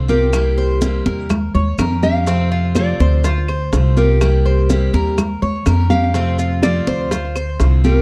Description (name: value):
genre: latin, Cuban son and guajira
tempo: 124 BPM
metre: 4/4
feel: straight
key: F major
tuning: A4 = 440 Hz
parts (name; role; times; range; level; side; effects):
- nylon-string guitar; melody; 0.0-8.0 s; Bb4 to F5; -23 LUFS; equal; slapback echo
- picked steel-string acoustic guitar; accompaniment; 0.0-8.0 s; C3 to G4; -25 LUFS; equal; none
- Cuban tres; arpeggios; 0.0-8.0 s; C4 to Db5; -28 LUFS; equal; slapback echo
- upright bass; bass; 0.0-8.0 s; C2 to F2; -19 LUFS; equal; none
- congas; percussion; 0.1-8.0 s; none; -23 LUFS; equal; none
- maracas; percussion; 0.1-8.0 s; none; -37 LUFS; equal; none
- bongos; percussion; 0.3-7.8 s; none; -28 LUFS; equal; none
- claves; percussion; 0.3-7.6 s; none; -33 LUFS; equal; none
room: small room ambience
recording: dry, close 1970s-style studio recording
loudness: -16 LUFS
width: mono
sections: 0.0-8.0 A section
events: none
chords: 0.3 C7; 1.3 Eb7; 2.3 F; 3.2 Dm7; 4.2 C7; 5.2 Eb7; 6.1 F; 7.1 Dm7